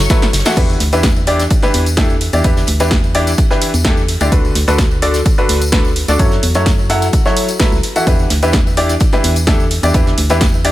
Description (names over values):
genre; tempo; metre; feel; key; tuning
piano house; 128 BPM; 4/4; straight; E dorian; A4 = 439 Hz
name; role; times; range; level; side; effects
warm studio string section; sustained chords; 0.0-0.6 s; C#5 to C#6; -28 LUFS; left 4 dB; sidechain pumping
organ-like FM bass; bass; 0.0-10.7 s; F#1 to F#2; -17 LUFS; equal; tube saturation, sidechain pumping
punchy analog drum machine; drums; 0.0-10.7 s; crash cymbal, hi-hat, snare drum, tambourine; -20 LUFS; right 1 dB; none
bright grand piano; riff; 0.1-10.7 s; D3 to F#5; -16 LUFS; left 1 dB; sidechain pumping, digital delay
electronic kick drum; drums; 0.1-10.5 s; none; -14 LUFS; equal; none
tambourine; percussion; 0.1-10.6 s; none; -28 LUFS; left 2 dB; none
loose indie drum kit; drums; 0.2-10.7 s; ride cymbal, snare drum; -28 LUFS; left 1 dB; sidechain pumping on cymbals, high-pass filter on cymbals, high-pass filter on snare, high-pass filter on room
room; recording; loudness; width
studio ambience; none; -11 LUFS; side -15 dB against mid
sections
0.6-10.7 A section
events
drum fill 0.1-0.6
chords
0.0 F#m7; 0.6 Em7; 4.3 Bm7/D; 6.2 F#m7; 8.1 Em7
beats
0.10 | 0.57 1.04 1.51 1.98 | 2.44 2.91 3.38 3.85 | 4.32 4.79 5.26 5.72 | 6.19 6.66 7.13 7.60 | 8.07 8.54 9.01 9.47 | 9.94 10.41